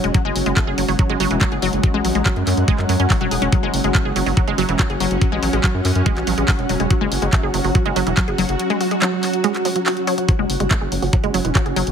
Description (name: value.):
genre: psychedelic trance.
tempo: 142 BPM.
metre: 4/4.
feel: straight.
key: unclear.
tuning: A4 = 440 Hz.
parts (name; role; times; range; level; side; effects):
swarming drone; sustained chords; 0.0-11.9 s; F#3 to F#4; -25 LUFS; right 2 dB; built-in reverb, vintage 12-bit sampler grit, sidechain pumping.
wide unison pluck; riff; 0.0-11.8 s; E3 to G#4; -22 LUFS; moving between left 6 dB and right 8 dB; auto-pan, sidechain pumping, digital delay.
round analog bass; bass; 0.0-11.9 s; E1 to F#2; -22 LUFS; equal; none.
drum and bass drum kit; drums; 0.0-11.9 s; handclaps, hi-hat; -25 LUFS; equal; none.
granular cloud pad; texture; 0.0-11.9 s; C#4 to F#5; -25 LUFS; left 1 dB; built-in reverb, sidechain pumping.
electronic kick drum; drums; 0.1-11.6 s; none; -17 LUFS; equal; none.
room: light reverb, digital ambience.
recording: heavily compressed radio sound.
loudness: -16 LUFS.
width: side -7 dB against mid.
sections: 0.0-11.9 A section.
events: none.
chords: 0.0 F#5.